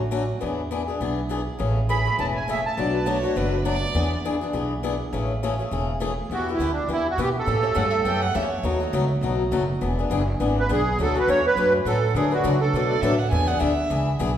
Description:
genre	acoustic string swing (jazz manouche)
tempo	205 BPM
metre	4/4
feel	swing 57% on 8ths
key	unclear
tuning	A4 = 442 Hz
part	upright bass	bass	0.0-14.4 s	E1 to D3	-26 LUFS	right 1 dB	none
part	picked swing-style acoustic guitar	accompaniment	0.1-14.3 s	B2 to B4	-25 LUFS	left 3 dB	none
part	accordion	melody	1.9-3.2, 6.3-8.2, 10.6-13.2 s	D4 to B5	-23 LUFS	right 3 dB	light tremolo tuning
part	warm violin	second line	2.9-4.2, 7.6-9.0, 12.9-14.2 s	B4 to G#5	-29 LUFS	right 3 dB	none
room	wet recital hall reverb, RT60 1.8 s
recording	recorded in a church or concert hall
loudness	-21 LUFS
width	side -10 dB against mid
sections	0.0-6.3 A section; 6.3-14.4 B section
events	none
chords	0.4 E7; 1.6 Amaj7; 2.8 Bm7; 3.9 E7; 5.1 Amaj7; 6.3 Em; 7.5 A7; 8.6 B7; 9.8 E7; 11.0 Dmaj7; 12.2 Bm7; 13.3 E7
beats	0.12 | 0.41 0.71 1.00 1.30 | 1.59 1.89 2.18 2.48 | 2.77 3.06 3.36 3.65 | 3.95 4.24 4.54 4.83 | 5.12 5.42 5.71 6.00 | 6.30 6.59 6.88 7.18 | 7.47 7.76 8.05 8.35 | 8.64 8.93 9.23 9.52 | 9.81 10.11 10.40 10.69 | 10.98 11.28 11.57 11.86 | 12.15 12.45 12.74 13.03 | 13.32 13.62 13.91 14.20

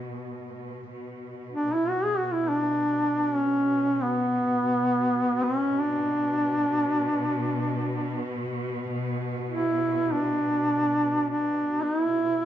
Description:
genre	caucasian folk, Caucasian lament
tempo	free time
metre	none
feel	none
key	B minor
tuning	A4 = 440 Hz
part	rich chamber string section	drone	0.0-12.4 s	B2	-33 LUFS	equal	none
part	warm duduk	melody	1.5-12.4 s	B3 to G#4	-23 LUFS	equal	none
room	moderate large studio reverb, RT60 1.4 s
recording	band playing live in one room, nothing above 7.5 kHz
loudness	-23 LUFS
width	side -11 dB against mid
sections	0.9-12.4 A section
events	none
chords	none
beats	free time

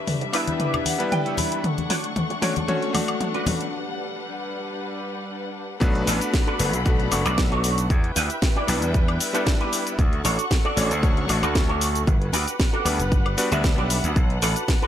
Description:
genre	nu-disco, nu disco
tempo	115 BPM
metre	4/4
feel	swing 53% on 16ths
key	B minor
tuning	A4 = 439 Hz
part	muted studio string section	sustained chords	0.0-14.9 s	G3 to C#6	-30 LUFS	left 2 dB	sidechain pumping
part	electric guitar with an envelope filter	riff	0.1-14.9 s	D4 to B5	-28 LUFS	right 3 dB	ensemble chorus, low-pass filter, ping-pong delay
part	house drum kit	drums	0.1-14.9 s	hi-hat, shaker, snare drum, toms, woodblock	-27 LUFS	left 1 dB	none
part	congas	percussion	0.1-3.6 s	none	-30 LUFS	left 3 dB	none
part	bright electric grand piano	accompaniment	0.3-14.2 s	G3 to C#6	-28 LUFS	left 2 dB	sidechain pumping, ping-pong delay
part	gritty slap bass	bass	5.8-14.5 s	F#1 to E2	-24 LUFS	equal	overdrive, sidechain pumping
part	electronic kick drum	drums	5.8-14.8 s	none	-21 LUFS	equal	none
room	light reverb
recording	none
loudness	-20 LUFS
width	side -10 dB against mid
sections	0.0-5.8 A section; 5.8-14.9 B section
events	build-up 0.0-5.8; drum fill 0.0-3.7; clean electric guitar fill 0.1-1.6; break 3.7-5.8; drop 5.8-14.9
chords	0.0 Em7; 1.6 Dmaj7; 3.7 Gmaj7; 5.8 Bm7; 7.9 Em7; 10.0 Dmaj7; 12.1 Gmaj7; 14.2 Bm7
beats	0.07 0.60 1.12 | 1.64 2.16 2.68 3.21 | 3.73 4.25 4.77 5.29 | 5.81 6.33 6.86 7.38 | 7.90 8.42 8.94 9.47 | 9.99 10.51 11.03 11.55 | 12.07 12.60 13.12 13.64 | 14.16 14.68

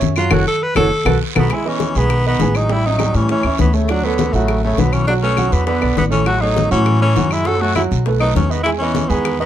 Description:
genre	Afro-Cuban jazz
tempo	202 BPM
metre	4/4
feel	straight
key	E major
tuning	A4 = 438 Hz
part	warm upright piano	accompaniment	0.0-9.5 s	F#3 to G#5	-21 LUFS	right 6 dB	none
part	upright bass	bass	0.0-9.5 s	F#1 to A2	-18 LUFS	equal	none
part	congas	percussion	0.0-9.5 s	none	-23 LUFS	left 5 dB	none
part	cowbell and bongos	percussion	0.0-9.5 s	none	-27 LUFS	left 6 dB	none
part	guiro	percussion	0.0-9.5 s	none	-33 LUFS	right 8 dB	none
part	breathy tenor saxophone	melody	0.2-9.5 s	A3 to B4	-19 LUFS	equal	none
part	claves	percussion	0.2-9.4 s	none	-26 LUFS	left 5 dB	none
part	trombone with metal mute	second line	1.4-9.5 s	C#3 to C#4	-26 LUFS	left 5 dB	none
room	light reverb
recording	dark, warm production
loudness	-14 LUFS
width	side -11 dB against mid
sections	0.0-1.5 A section; 1.5-9.5 B section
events	tenor saxophone solo 0.0-1.5; band accent 0.3-1.5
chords	0.3 F#m; 0.9 B5; 1.5 Emaj7; 2.7 A6; 3.9 Dmaj7; 5.1 Bsus2; 5.7 E5; 6.3 A6; 7.5 F#m; 8.1 B7; 8.7 Emaj7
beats	0.02 | 0.32 0.62 0.91 1.21 | 1.51 1.81 2.10 2.40 | 2.70 3.00 3.29 3.59 | 3.89 4.19 4.49 4.78 | 5.08 5.38 5.68 5.97 | 6.27 6.57 6.87 7.16 | 7.46 7.76 8.06 8.35 | 8.65 8.95 9.24

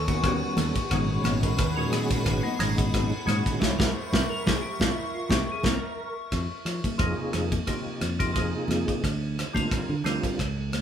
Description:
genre	electric jazz fusion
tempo	89 BPM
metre	4/4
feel	swing 54% on 16ths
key	F minor from 6.3 s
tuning	A4 = 441 Hz
part	percussive tonewheel organ	accompaniment	0.0-10.4 s	A#2 to C#5	-30 LUFS	right 1 dB	slow rotary speaker, chorus vibrato
part	icy glass pad	sustained chords	0.0-6.3 s	G#4 to C#6	-34 LUFS	left 3 dB	chorus, built-in reverb
part	fingered electric bass	bass	0.0-10.8 s	G#1 to F3	-30 LUFS	equal	none
part	mellow electric guitar	stabs	0.1-5.8 s	F#3 to F#4	-34 LUFS	left 2 dB	none
part	modern studio drum kit	drums	0.1-10.8 s	kick drum, ride cymbal, rim click, snare drum	-28 LUFS	equal	none
part	congas	percussion	0.1-10.8 s	none	-33 LUFS	equal	none
room	light reverb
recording	band playing live in one room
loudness	-24 LUFS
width	side -9 dB against mid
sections	0.0-6.3 A section; 6.3-10.8 B section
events	band accent 3.6-6.3; drum fill 5.0-6.3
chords	0.0 D#7alt; 0.9 G#m7; 3.6 C7b9; 6.3 Fm9; 9.0 Bb69/D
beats	0.24 | 0.91 1.59 2.26 2.94 | 3.61 4.29 4.96 5.64 | 6.32 7.00 7.67 8.35 | 9.03 9.71 10.38

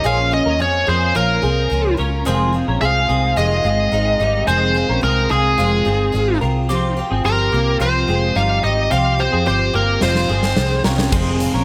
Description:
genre	jangly indie pop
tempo	108 BPM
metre	4/4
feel	straight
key	F minor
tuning	A4 = 440 Hz
part	biting lead guitar	melody	0.0-10.8 s	Ab4 to F5	-21 LUFS	equal	overdrive
part	picked twelve-string acoustic guitar	accompaniment	0.0-11.6 s	F2 to G4	-26 LUFS	equal	none
part	twelve-string electric guitar	arpeggios	0.0-11.6 s	G3 to Bb4	-25 LUFS	equal	ensemble chorus
part	vintage muted fingered electric bass	bass	0.1-11.6 s	F1 to F2	-22 LUFS	equal	none
part	big rock drum kit	drums	10.0-11.5 s	crash cymbal, hi-hat, kick drum, snare drum	-23 LUFS	equal	none
room	light reverb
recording	none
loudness	-17 LUFS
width	mono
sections	0.0-11.1 A section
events	drum fill 10.0-11.1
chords	0.0 Bbm; 2.3 Fm7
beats	| 0.04 0.60 1.15 1.71 | 2.26 2.81 3.37 3.92 | 4.48 5.03 5.58 6.14 | 6.69 7.25 7.80 8.36 | 8.91 9.46 10.02 10.57 | 11.13

